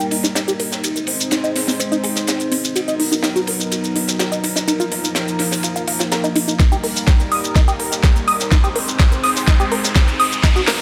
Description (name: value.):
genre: progressive house.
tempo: 125 BPM.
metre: 4/4.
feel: straight.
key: unclear.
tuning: A4 = 440 Hz.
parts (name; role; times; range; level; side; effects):
warm analog pad; sustained chords; 0.0-10.8 s; F3 to C5; -26 LUFS; equal; chorus, sidechain pumping.
tight sequenced synth; arpeggios; 0.0-10.7 s; C4 to Eb6; -24 LUFS; equal; chorus, sidechain pumping, digital delay.
pop drum kit; drums; 0.0-10.8 s; hi-hat, shaker, snare drum; -24 LUFS; equal; sidechain pumping on hats, high-pass filter on hats, studio reverb, sidechain pumping on perc, high-pass filter on perc, high-pass filter on snare.
tight funk drum kit; drums; 0.1-10.8 s; hi-hat, ride cymbal, snare drum; -30 LUFS; equal; sidechain pumping on cymbals, high-pass filter on cymbals, studio reverb, sidechain pumping on hats, high-pass filter on hats, high-pass filter on snare, high-pass filter on room.
electronic kick drum; drums; 6.6-10.5 s; none; -15 LUFS; equal; studio reverb.
riser; sound effects; 8.1-10.8 s; none; -30 LUFS; equal; none.
room: light reverb, small room ambience.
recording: none.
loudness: -18 LUFS.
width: mono.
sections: 0.0-10.8 A section.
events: build-up 0.0-10.8; filter sweep on synth arpeggio sound 0.0-10.8; drum fill 6.6-10.8; riser 8.1-10.8.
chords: 0.0 Eb; 0.8 Ab; 2.8 Bmaj7; 4.7 Bbsus4; 6.6 Eb; 8.5 Ab.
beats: 0.36 | 0.84 1.32 1.80 2.28 | 2.76 3.24 3.72 4.20 | 4.68 5.16 5.64 6.12 | 6.60 7.08 7.56 8.04 | 8.52 9.00 9.48 9.96 | 10.44.